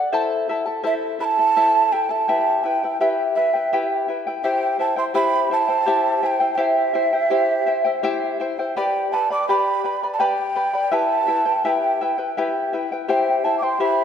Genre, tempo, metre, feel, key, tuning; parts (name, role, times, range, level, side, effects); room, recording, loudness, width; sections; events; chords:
andean folk; 83 BPM; 3/4; straight; A4 = 440 Hz
charango; accompaniment; 0.0-14.0 s; E4 to B5; -21 LUFS; left 3 dB
breathy mellow large quena; melody; 0.9-14.0 s; E5 to D6; -20 LUFS; right 3 dB
wet concert hall reverb, RT60 2.0 s; -18 LUFS; side -8 dB against mid
0.0-4.4 A section; 4.4-14.0 B section
0.1 Am; 2.3 Em; 4.4 C; 8.8 G; 10.9 Em; 13.1 C